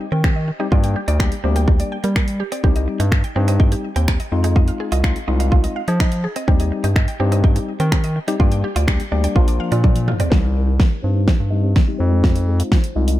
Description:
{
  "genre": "dance-pop",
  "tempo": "125 BPM",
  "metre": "4/4",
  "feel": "straight",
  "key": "C minor",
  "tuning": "A4 = 443 Hz",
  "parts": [
    { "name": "tine electric piano", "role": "accompaniment", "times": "0.0-13.2 s", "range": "F3 to G4", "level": "-25 LUFS", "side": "left 5 dB", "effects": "low-pass filter" },
    { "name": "mallet-like synth pluck", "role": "arpeggios", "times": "0.1-13.2 s", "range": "G3 to G5", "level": "-30 LUFS", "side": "right 1 dB", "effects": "chorus, phaser, sidechain pumping, low-pass filter, ping-pong delay" },
    { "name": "direct-recorded clean electric guitar", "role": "riff", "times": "0.1-13.2 s", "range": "Bb3 to F4", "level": "-29 LUFS", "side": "right 6 dB", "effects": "wide subtle chorus, low-pass filter" },
    { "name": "round analog bass", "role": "bass", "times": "0.1-13.2 s", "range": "Bb1 to G3", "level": "-18 LUFS", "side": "equal", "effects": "sidechain pumping" },
    { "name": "pop drum kit", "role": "drums", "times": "0.2-13.2 s", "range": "finger snaps, hi-hat, kick drum, snare drum, toms", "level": "-17 LUFS", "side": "equal", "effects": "none" },
    { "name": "felt-muted upright piano", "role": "melody", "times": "10.3-12.9 s", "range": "Bb4 to Eb5", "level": "-34 LUFS", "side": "left 1 dB", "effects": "low-pass filter, ping-pong delay" }
  ],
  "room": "little or no reverb",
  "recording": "none",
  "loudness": "-15 LUFS",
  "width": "side -15 dB against mid",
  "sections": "0.0-10.3 A section; 10.3-13.2 B section",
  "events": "drum fill 9.8-10.3, 10.3-13.2; build-up 10.3-13.2; filter sweep 10.3-13.2",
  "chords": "0.0 Cm/Eb; 0.7 Gm; 2.6 Cm; 4.3 Fm7; 6.5 Cm/Eb; 8.4 Gm; 9.4 Bb; 10.3 Cm; 12.0 Fm7",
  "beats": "0.24 | 0.72 1.20 1.68 2.16 | 2.64 3.12 3.60 4.08 | 4.56 5.04 5.52 6.00 | 6.48 6.96 7.44 7.92 | 8.40 8.88 9.36 9.84 | 10.32 10.80 11.28 11.76 | 12.24 12.72"
}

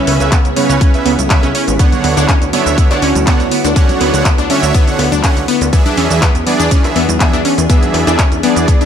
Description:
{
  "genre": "progressive house",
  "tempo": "122 BPM",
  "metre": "4/4",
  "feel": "straight",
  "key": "unclear",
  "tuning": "A4 = 440 Hz",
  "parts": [
    { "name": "evolving wavetable pad", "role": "sustained chords", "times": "0.0-8.9 s", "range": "C#3 to C#5", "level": "-20 LUFS", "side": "left 1 dB", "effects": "chorus, built-in reverb, sidechain pumping" },
    { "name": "soft supersaw", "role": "stabs", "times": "0.0-8.9 s", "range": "C#3 to F#5", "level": "-17 LUFS", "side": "right 3 dB", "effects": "sidechain pumping, dub echo" },
    { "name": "analog pluck", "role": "arpeggios", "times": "0.1-8.9 s", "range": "B3 to D4", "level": "-17 LUFS", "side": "left 1 dB", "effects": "chorus, sidechain pumping, dub echo" },
    { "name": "plucky analog bass", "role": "bass", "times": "0.1-8.7 s", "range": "G#1 to E2", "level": "-17 LUFS", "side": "equal", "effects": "sidechain pumping" },
    { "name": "house drum kit", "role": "drums", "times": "0.1-8.9 s", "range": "handclaps, hi-hat, shaker", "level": "-20 LUFS", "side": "equal", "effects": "studio reverb" },
    { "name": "cowbell, bongos and congas", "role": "percussion", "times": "0.1-8.5 s", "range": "none", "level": "-26 LUFS", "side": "equal", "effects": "none" },
    { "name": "electronic kick drum", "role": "drums", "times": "0.3-8.8 s", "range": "none", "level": "-11 LUFS", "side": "equal", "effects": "studio reverb" }
  ],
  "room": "light reverb",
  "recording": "none",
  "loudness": "-10 LUFS",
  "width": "side -8 dB against mid",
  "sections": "0.0-8.9 A section",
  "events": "none",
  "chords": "0.0 C#m7; 1.8 Dmaj7; 5.7 E7",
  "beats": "0.32 0.81 1.30 | 1.79 2.29 2.78 3.27 | 3.76 4.25 4.75 5.24 | 5.73 6.22 6.71 7.20 | 7.70 8.19 8.68"
}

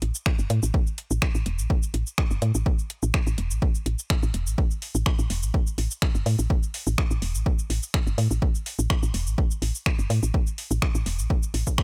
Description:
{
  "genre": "minimal techno",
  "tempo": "125 BPM",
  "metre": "4/4",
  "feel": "swing 53% on 16ths",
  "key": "unclear",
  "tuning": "A4 = 440 Hz",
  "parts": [
    { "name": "woody FM bass", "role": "bass", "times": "0.0-11.6 s", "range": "E1 to A2", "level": "-27 LUFS", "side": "equal", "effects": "sidechain pumping" },
    { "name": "garage drum kit", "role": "drums", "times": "0.0-11.8 s", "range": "finger snaps, hi-hat, shaker", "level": "-33 LUFS", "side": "equal", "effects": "overdrive" },
    { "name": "electronic kick drum", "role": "drums", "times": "0.3-11.8 s", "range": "none", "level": "-26 LUFS", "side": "equal", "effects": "none" }
  ],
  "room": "digital ambience",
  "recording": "none",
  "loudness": "-25 LUFS",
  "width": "mono",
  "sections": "0.0-11.8 A section",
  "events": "none",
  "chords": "none",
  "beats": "0.26 | 0.74 1.22 1.70 2.18 | 2.66 3.14 3.62 4.10 | 4.58 5.06 5.54 6.02 | 6.50 6.98 7.46 7.94 | 8.42 8.90 9.38 9.86 | 10.34 10.82 11.30 11.78"
}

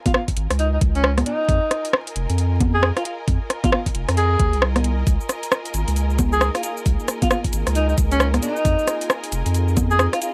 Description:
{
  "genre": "UK garage, two-step garage",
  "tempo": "134 BPM",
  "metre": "4/4",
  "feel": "swing 62% on 16ths",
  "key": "unclear",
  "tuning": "A4 = 440 Hz",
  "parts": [
    { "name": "dark studio string section", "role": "texture", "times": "0.0-10.3 s", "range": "F4 to Ab5", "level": "-35 LUFS", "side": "equal", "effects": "sidechain pumping" },
    { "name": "warm alto saxophone", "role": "melody", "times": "0.1-10.3 s", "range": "Db4 to Ab4", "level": "-25 LUFS", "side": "equal", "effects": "none" },
    { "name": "electronic kick drum", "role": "drums", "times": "0.1-9.9 s", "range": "none", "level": "-23 LUFS", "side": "equal", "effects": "overdrive" },
    { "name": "garage drum kit", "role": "drums", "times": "0.1-10.3 s", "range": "cabasa, congas, hi-hat, rim click", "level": "-24 LUFS", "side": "equal", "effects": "overdrive" },
    { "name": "saturated sub bass", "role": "bass", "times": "0.4-10.1 s", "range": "F1 to F2", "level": "-23 LUFS", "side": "equal", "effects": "none" },
    { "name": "ethereal airy pad", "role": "sustained chords", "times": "5.9-10.3 s", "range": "Bb3 to Ab4", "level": "-37 LUFS", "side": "equal", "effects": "ensemble chorus, built-in reverb, vintage 12-bit sampler grit, sidechain pumping" }
  ],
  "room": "little or no reverb",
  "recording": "dry, gritty hardware recording, vinyl crackle",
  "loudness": "-20 LUFS",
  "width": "mono",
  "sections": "0.0-10.3 A section",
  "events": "fade-in on string section 0.0-10.3",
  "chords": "0.0 Db69; 1.3 Fm7; 5.1 Db69; 8.4 Fm7",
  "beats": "0.14 0.59 1.04 | 1.49 1.93 2.38 2.83 | 3.28 3.73 4.17 4.62 | 5.07 5.52 5.96 6.41 | 6.86 7.31 7.75 8.20 | 8.65 9.10 9.55 9.99"
}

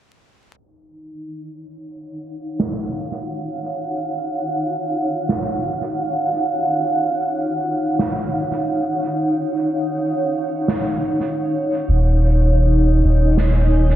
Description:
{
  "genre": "ambient dub",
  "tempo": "89 BPM",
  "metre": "4/4",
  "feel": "swing 56% on 16ths",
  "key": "Eb minor",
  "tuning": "A4 = 439 Hz",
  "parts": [
    { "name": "granular cloud pad", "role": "sustained chords", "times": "1.2-14.0 s", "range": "Eb4 to Ab5", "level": "-21 LUFS", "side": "right 1 dB", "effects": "built-in reverb" },
    { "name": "snare drum", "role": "drums", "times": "2.6-13.5 s", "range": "none", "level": "-24 LUFS", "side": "right 2 dB", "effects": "low-pass filter on snare, low-pass filter on room, dub echo" },
    { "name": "soft dub sub bass", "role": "bass", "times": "11.9-14.0 s", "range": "Eb1", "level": "-14 LUFS", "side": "equal", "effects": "none" }
  ],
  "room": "moderate concert hall reverb, RT60 1.8 s, small room reverb",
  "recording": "vinyl crackle, low-pass filter",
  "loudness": "-18 LUFS",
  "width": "side -12 dB against mid",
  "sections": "0.6-14.0 A section",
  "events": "filter sweep on drum 0.6-14.0; filter sweep on ambient pad 0.6-14.0; filter sweep 0.6-14.0",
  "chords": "0.6 Ebm9",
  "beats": "| 0.57 1.25 1.92 2.60 | 3.27 3.94 4.62 5.29 | 5.97 6.64 7.31 7.99 | 8.66 9.34 10.01 10.69 | 11.36 12.03 12.71 13.38"
}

